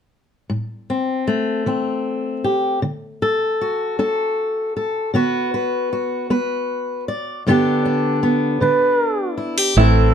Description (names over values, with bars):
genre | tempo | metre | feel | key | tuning
folk | 52 BPM (dotted quarters) | 6/8 | straight | A dorian | A4 = 441 Hz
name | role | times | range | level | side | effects
fingerpicked steel-string acoustic guitar | accompaniment | 0.5-10.1 s | G2 to D5 | -18 LUFS | left 1 dB | none
trumpet with bucket mute | melody | 8.6-10.1 s | A4 to B4 | -17 LUFS | right 3 dB | none
open-back banjo | arpeggios | 9.8-10.1 s | E4 | -19 LUFS | right 5 dB | none
woody fretless electric bass | bass | 9.8-10.1 s | A1 | -13 LUFS | right 1 dB | none
room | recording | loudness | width
light reverb | dark, warm production | -18 LUFS | side -8 dB against mid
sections
0.5-9.8 A section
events
none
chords
0.5 Am; 2.8 D; 5.2 Bm/D; 7.5 G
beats
| 0.51 1.67 | 2.83 3.99 | 5.15 6.31 | 7.46 8.62 | 9.78